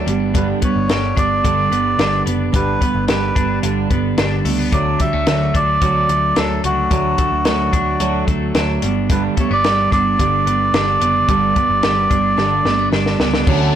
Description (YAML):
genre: jangly indie pop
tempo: 110 BPM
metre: 4/4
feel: straight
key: unclear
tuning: A4 = 440 Hz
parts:
  - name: fingerpicked steel-string acoustic guitar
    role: accompaniment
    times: 0.0-13.8 s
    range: G2 to D4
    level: -22 LUFS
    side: right 10 dB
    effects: none
  - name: twelve-string electric guitar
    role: arpeggios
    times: 0.0-13.8 s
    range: G2 to D4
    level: -22 LUFS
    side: left 3 dB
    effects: warbly pitch drift, tape echo
  - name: vintage muted picked electric bass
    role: bass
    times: 0.1-13.7 s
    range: F#1 to D2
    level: -23 LUFS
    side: left 1 dB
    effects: none
  - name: compact cocktail drum kit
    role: drums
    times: 0.1-13.6 s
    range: crash cymbal, hi-hat, kick drum, snare drum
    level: -19 LUFS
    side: left 1 dB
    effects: none
  - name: melodica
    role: melody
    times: 0.4-12.9 s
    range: F#4 to E5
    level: -19 LUFS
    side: right 1 dB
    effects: tape echo
  - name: warm analog pad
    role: sustained chords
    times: 13.5-13.8 s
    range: D3 to A5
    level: -20 LUFS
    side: left 4 dB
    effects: chorus
room: little or no reverb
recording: blown-out, overdriven recording, overdrive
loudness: -14 LUFS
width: side -10 dB against mid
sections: 0.0-13.5 A section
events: drum fill 12.4-13.5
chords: 0.1 G; 4.7 D; 8.8 G